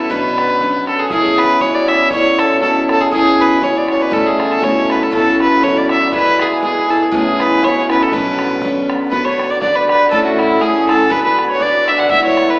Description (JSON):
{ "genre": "celtic folk, Celtic polka", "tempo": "120 BPM", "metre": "2/4", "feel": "swing 54% on 8ths", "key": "B dorian", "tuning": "A4 = 441 Hz", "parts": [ { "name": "warm fiddle", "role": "melody", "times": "0.0-12.6 s", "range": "E4 to G#5", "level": "-14 LUFS", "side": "equal", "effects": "none" }, { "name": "picked steel-string acoustic guitar", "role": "accompaniment", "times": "0.0-12.6 s", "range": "F#2 to C#5", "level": "-16 LUFS", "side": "equal", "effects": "none" }, { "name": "musette accordion", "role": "drone", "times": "0.0-9.2 s", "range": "B2", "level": "-25 LUFS", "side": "equal", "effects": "none" }, { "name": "bodhran", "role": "percussion", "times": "0.0-12.5 s", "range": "none", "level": "-27 LUFS", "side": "equal", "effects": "none" }, { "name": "hammered dulcimer", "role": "second line", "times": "0.9-12.6 s", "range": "E4 to F#5", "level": "-19 LUFS", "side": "right 1 dB", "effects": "none" } ], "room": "wet recital hall reverb, RT60 1.7 s", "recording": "recorded in a church or concert hall, AM radio sound", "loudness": "-11 LUFS", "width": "side -23 dB against mid", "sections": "0.0-1.1 A section; 1.1-9.1 A section; 9.1-12.6 B section", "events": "none", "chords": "0.1 Bmadd9; 1.1 C#m; 2.1 A; 3.1 C#m; 4.1 A; 5.1 F#m7; 6.1 E; 7.1 Aadd9; 8.1 Bmadd9; 9.1 Bm; 10.1 A; 11.1 Bm" }